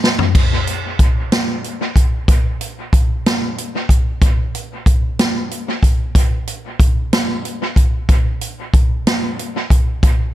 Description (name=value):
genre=gospel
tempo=62 BPM (dotted quarters)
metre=6/8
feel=straight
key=none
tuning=none
part: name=swinging big-band drum kit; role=drums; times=0.0-10.2 s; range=crash cymbal, hi-hat, kick drum, snare drum, toms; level=-14 LUFS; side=equal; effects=dub echo
room=little or no reverb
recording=echo-heavy mix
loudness=-14 LUFS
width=side -14 dB against mid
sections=0.4-10.3 A section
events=drum fill 0.0-0.4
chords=none